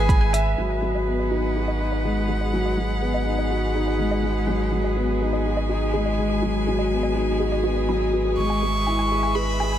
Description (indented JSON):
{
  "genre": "electronica",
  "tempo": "123 BPM",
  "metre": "4/4",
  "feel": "straight",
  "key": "unclear",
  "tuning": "A4 = 440 Hz",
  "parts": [
    { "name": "rich violin", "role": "melody", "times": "0.0-0.3, 8.4-9.8 s", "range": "G#5 to C#6", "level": "-26 LUFS", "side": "equal", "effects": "ping-pong delay" },
    { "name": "rich string quartet", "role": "sustained chords", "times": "0.0-9.8 s", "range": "G#3 to G#5", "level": "-30 LUFS", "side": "equal", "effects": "sidechain pumping" },
    { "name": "warm concert grand piano", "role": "riff", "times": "0.0-9.8 s", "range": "F#3 to G#5", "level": "-24 LUFS", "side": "left 2 dB", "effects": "ping-pong delay" },
    { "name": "warm sub bass", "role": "bass", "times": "0.0-9.8 s", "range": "G#1", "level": "-25 LUFS", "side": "equal", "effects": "sidechain pumping" },
    { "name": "analog pluck", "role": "arpeggios", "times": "0.1-9.8 s", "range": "F#4 to B5", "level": "-32 LUFS", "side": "right 1 dB", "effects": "chorus, sidechain pumping, ping-pong delay" }
  ],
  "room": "moderate echo chamber reverb, RT60 2.3 s",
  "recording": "none",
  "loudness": "-20 LUFS",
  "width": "side -10 dB against mid",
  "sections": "0.6-9.8 A section",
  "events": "filter sweep on synth arpeggio sound 0.6-9.8",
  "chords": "0.0 E/G#; 0.6 G#m7; 8.4 E/G#",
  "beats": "0.09 | 0.58 1.07 1.56 2.04 | 2.53 3.02 3.51 4.00 | 4.48 4.97 5.46 5.95 | 6.43 6.92 7.41 7.90 | 8.38 8.87 9.36"
}